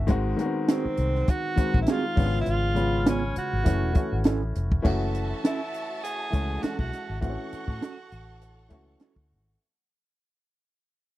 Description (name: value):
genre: lush 1970s-style soul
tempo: 101 BPM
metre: 4/4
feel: swing 54% on 16ths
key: F# minor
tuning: A4 = 440 Hz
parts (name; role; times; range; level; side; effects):
- clear grand piano; accompaniment; 0.0-9.6 s; C#3 to A5; -30 LUFS; left 2 dB; none
- vintage muted fingered electric bass; bass; 0.0-9.5 s; E1 to A2; -28 LUFS; equal; none
- compact cocktail drum kit; drums; 0.1-9.5 s; crash cymbal, hi-hat, kick drum, snare drum; -24 LUFS; equal; none
- clear tenor saxophone; melody; 0.7-9.0 s; B#3 to G#4; -31 LUFS; right 2 dB; none
- mellow electric guitar; riff; 0.7-9.2 s; B3 to A4; -30 LUFS; right 6 dB; analog chorus
- glockenspiel with soft plastic mallets; texture; 2.8-7.2 s; B5 to A6; -43 LUFS; left 3 dB; none
- warm studio violin section; second line; 4.8-9.6 s; F#4 to C#6; -40 LUFS; right 1 dB; none
room: little or no reverb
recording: dry, close 1970s-style studio recording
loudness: -24 LUFS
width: side -15 dB against mid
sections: 0.0-4.8 A section; 4.8-9.6 B section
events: fade-out 4.8-9.6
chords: 0.1 G#7; 2.2 C#7/G#; 3.7 F#m7; 7.2 A6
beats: | 0.09 0.69 1.28 1.88 | 2.47 3.06 3.66 4.25 | 4.85 5.44 6.03 6.63 | 7.22 7.82 8.41 9.00